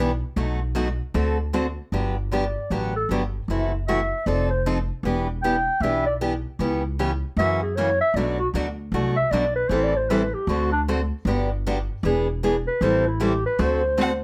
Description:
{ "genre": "acoustic string swing (jazz manouche)", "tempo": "154 BPM", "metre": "4/4", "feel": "swing 63% on 8ths", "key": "G major", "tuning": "A4 = 437 Hz", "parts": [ { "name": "picked steel-string acoustic guitar", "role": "accompaniment", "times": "0.0-14.1 s", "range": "B2 to A4", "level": "-27 LUFS", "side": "equal", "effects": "none" }, { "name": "upright bass", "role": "bass", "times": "0.0-14.2 s", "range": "E1 to F#2", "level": "-29 LUFS", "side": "equal", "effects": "none" }, { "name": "mellow clarinet", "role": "second line", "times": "2.3-14.2 s", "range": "D4 to G5", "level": "-26 LUFS", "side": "equal", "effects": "none" }, { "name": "clear violin", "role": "melody", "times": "14.0-14.1 s", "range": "F#5", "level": "-29 LUFS", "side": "equal", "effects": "none" } ], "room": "light reverb", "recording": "none", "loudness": "-23 LUFS", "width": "mono", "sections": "0.0-1.9 A section; 1.9-14.2 B section", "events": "clarinet solo 1.9-14.2", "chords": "0.4 B7; 1.1 D7; 1.9 Gmaj7; 3.5 F#m7b5; 4.3 F7; 5.0 Em7; 6.6 C#m7b5; 7.4 F#7; 8.2 Bm7; 9.7 Am7; 10.5 D7; 11.3 Gmaj7; 12.0 E7; 12.8 Am7; 13.6 D7" }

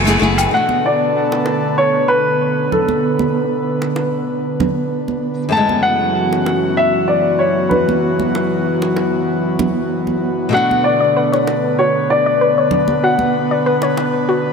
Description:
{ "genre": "sunset chillout", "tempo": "96 BPM", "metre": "4/4", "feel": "straight", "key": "unclear", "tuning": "A4 = 440 Hz", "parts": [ { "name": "flamenco guitar", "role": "accompaniment", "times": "0.0-14.5 s", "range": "F#2 to G#4", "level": "-23 LUFS", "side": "moving between left 3 dB and right 5 dB", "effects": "auto-pan, ping-pong delay" }, { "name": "airy breathy pad", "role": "sustained chords", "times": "0.0-14.5 s", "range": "D3 to G#5", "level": "-18 LUFS", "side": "equal", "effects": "chorus" }, { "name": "modern bright fingered electric bass", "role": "bass", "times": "0.0-0.5 s", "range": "F#1", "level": "-18 LUFS", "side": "equal", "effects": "none" }, { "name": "hi-hat, shaker and woodblock", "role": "drums", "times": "0.1-0.5 s", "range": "none", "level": "-21 LUFS", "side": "left 1 dB", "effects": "low-pass filter on hats, low-pass filter on perc, low-pass filter on snare, low-pass filter on room" }, { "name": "congas and bongos", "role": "percussion", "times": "0.1-14.1 s", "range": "none", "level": "-23 LUFS", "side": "right 5 dB", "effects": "none" }, { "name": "dark grand piano", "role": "melody", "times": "0.5-14.2 s", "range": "A4 to A5", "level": "-17 LUFS", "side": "left 2 dB", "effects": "digital delay" }, { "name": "soft round pluck", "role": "arpeggios", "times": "10.5-14.4 s", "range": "F#4 to D5", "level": "-20 LUFS", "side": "left 5 dB", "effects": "chorus, ping-pong delay" } ], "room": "moderate lush hall reverb, RT60 2.7 s", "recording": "none", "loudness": "-14 LUFS", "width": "side -5 dB against mid", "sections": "0.5-14.5 A section", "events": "band accent 0.0", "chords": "0.0 F#m11; 0.5 Bm7; 5.5 F#m11; 10.5 Bm9" }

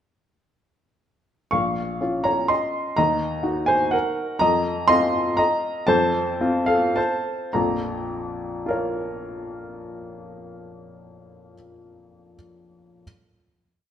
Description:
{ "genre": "classical, piano waltz", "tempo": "99-132 BPM", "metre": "3/4", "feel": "rubato", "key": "Bb minor", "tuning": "A4 = 439 Hz", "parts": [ { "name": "clear upright piano", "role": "solo", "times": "1.5-13.0 s", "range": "Bb1 to Db6", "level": "-21 LUFS", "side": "equal", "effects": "none" } ], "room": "wet recital hall reverb, RT60 1.6 s", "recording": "none", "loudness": "-20 LUFS", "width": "side -9 dB against mid", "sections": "1.5-7.6 A section; 7.6-10.9 final chord", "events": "slowing down 3.7-7.6", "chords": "1.5 Bbm; 3.0 Ebm; 4.4 F7sus4; 5.9 F; 7.6 Bbm" }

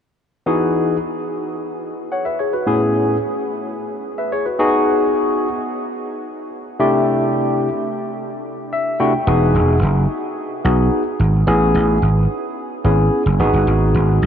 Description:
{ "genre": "early-eighties boogie funk", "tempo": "109 BPM", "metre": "4/4", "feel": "straight", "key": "E major", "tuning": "A4 = 441 Hz", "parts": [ { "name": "barky tine electric piano", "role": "accompaniment", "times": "0.5-14.3 s", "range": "A2 to G5", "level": "-18 LUFS", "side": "left 1 dB", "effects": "overdrive, wide subtle chorus" }, { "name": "vintage slap bass", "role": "bass", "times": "9.3-14.3 s", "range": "E1 to B1", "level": "-15 LUFS", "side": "right 1 dB", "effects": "none" } ], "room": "wet huge ambient reverb, RT60 6.6 s", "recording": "dreamy mix soaked in reverb", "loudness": "-15 LUFS", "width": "side -8 dB against mid", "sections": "0.5-9.3 A section; 9.3-14.3 B section", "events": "tine electric piano fill 8.4-9.3", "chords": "0.5 Emaj9; 2.7 Amaj9; 4.6 G#m7; 6.8 C69; 9.3 Emaj9; 11.5 Amaj9; 13.4 G#m7" }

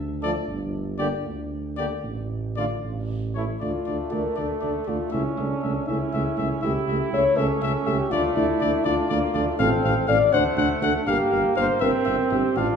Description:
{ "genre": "classical, brass quintet", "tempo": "80 BPM (dotted quarters)", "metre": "6/8", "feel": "rubato", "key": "D minor", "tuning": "A4 = 439 Hz", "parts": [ { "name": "mellow tuba", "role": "bass", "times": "0.0-12.7 s", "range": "G1 to D2", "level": "-27 LUFS", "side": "right 2 dB", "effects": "none" }, { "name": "clear trumpet", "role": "melody", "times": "0.2-12.7 s", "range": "C#5 to F#5", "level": "-28 LUFS", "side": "left 6 dB", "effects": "none" }, { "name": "warm flugelhorn", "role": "second line", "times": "0.2-12.8 s", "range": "A3 to A4", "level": "-29 LUFS", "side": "right 5 dB", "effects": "none" }, { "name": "mellow euphonium", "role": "accompaniment", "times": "0.2-12.7 s", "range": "D3 to D4", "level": "-32 LUFS", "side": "right 4 dB", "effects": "none" }, { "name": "warm French horn", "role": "accompaniment", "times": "0.2-12.8 s", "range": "A3 to D5", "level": "-25 LUFS", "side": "left 2 dB", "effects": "none" } ], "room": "wet recital hall reverb, RT60 1.4 s", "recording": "recorded in a church or concert hall", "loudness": "-21 LUFS", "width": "side -6 dB against mid", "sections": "0.0-3.6 A section; 3.6-12.8 B section", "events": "none", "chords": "0.5 G5; 2.0 N.C.; 3.6 Dm; 5.1 A/C#; 8.1 Dm; 9.6 F/A; 10.3 D7; 11.1 Gm7" }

